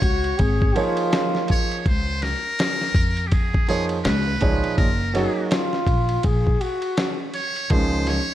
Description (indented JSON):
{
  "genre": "hip hop, jazz-hop",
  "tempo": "82 BPM",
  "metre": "4/4",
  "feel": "swing 59% on 16ths",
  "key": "Db major",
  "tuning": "A4 = 440 Hz",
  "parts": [
    { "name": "trumpet with metal mute", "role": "melody", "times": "0.0-8.3 s", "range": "G4 to Db5", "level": "-27 LUFS", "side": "equal", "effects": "none" },
    { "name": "clear trombone", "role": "second line", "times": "0.0-7.2 s", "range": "F4 to Ab4", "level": "-26 LUFS", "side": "left 2 dB", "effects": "none" },
    { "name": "upright bass", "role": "bass", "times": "0.0-8.2 s", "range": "Gb1 to F2", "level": "-24 LUFS", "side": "equal", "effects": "none" },
    { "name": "dusty soul sampler-style drum kit", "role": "drums", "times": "0.0-8.3 s", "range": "hi-hat, kick drum, ride cymbal, snare drum", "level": "-23 LUFS", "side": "equal", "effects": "none" },
    { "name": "clear concert grand piano", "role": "accompaniment", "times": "0.8-8.2 s", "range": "Bb2 to Db5", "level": "-24 LUFS", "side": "right 3 dB", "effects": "none" }
  ],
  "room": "light reverb, studio reverb",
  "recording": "dark, warm production",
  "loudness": "-19 LUFS",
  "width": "side -13 dB against mid",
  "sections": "0.0-1.9 A section; 1.9-8.3 B section",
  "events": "none",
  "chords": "0.0 Db69; 1.9 Dbadd9; 4.8 Gbmaj9; 7.7 Dbmaj9",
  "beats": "0.39 1.12 | 1.86 2.59 3.32 4.05 | 4.78 5.51 6.25 6.98 | 7.71"
}